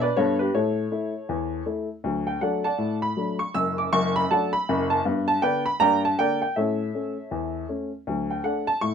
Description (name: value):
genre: jazz, stride piano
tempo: 159 BPM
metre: 4/4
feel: swing 61% on 8ths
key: D major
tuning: A4 = 435 Hz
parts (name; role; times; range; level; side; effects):
- warm upright piano; solo; 0.0-8.9 s; F#1 to E6; -22 LUFS; equal; none
room: light reverb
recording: none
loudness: -22 LUFS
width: side -7 dB against mid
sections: 0.0-2.0 A section; 2.0-8.9 B section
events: none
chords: 0.0 G; 0.5 A; 2.0 D; 3.5 D/F#; 5.1 G; 5.8 Gm; 6.6 A; 8.1 D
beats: 0.15 | 0.53 0.91 1.28 1.66 | 2.04 2.41 2.79 3.17 | 3.54 3.92 4.30 4.67 | 5.05 5.43 5.81 6.18 | 6.56 6.94 7.31 7.69 | 8.07 8.45 8.82